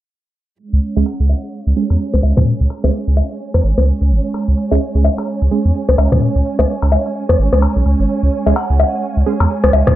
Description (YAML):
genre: minimal techno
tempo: 128 BPM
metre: 4/4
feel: swing 59% on 16ths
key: unclear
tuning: A4 = 440 Hz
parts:
  - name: dark symphonic string section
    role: texture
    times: 0.6-10.0 s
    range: G#3 to G#5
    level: -22 LUFS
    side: right 3 dB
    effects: none
  - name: saturated sub bass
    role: bass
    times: 0.7-9.9 s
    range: G#1 to E2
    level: -13 LUFS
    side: equal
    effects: none
  - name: wavetable chord stab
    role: stabs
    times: 1.0-5.6, 8.5-9.3 s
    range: G#3 to G#4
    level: -21 LUFS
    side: right 6 dB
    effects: tape echo
  - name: booming analog drum machine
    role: percussion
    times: 1.0-9.9 s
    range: cowbell, rim click, toms, woodblock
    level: -17 LUFS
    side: left 3 dB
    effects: none
  - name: glassy synth bell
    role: melody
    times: 1.1-1.7, 8.6-9.2 s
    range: F#5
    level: -28 LUFS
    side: right 4 dB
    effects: chorus, low-pass filter, tape echo
room: light reverb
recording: low-pass filter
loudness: -13 LUFS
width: side -14 dB against mid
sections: 0.6-10.0 A section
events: filter sweep 0.6-10.0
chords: 0.6 C#5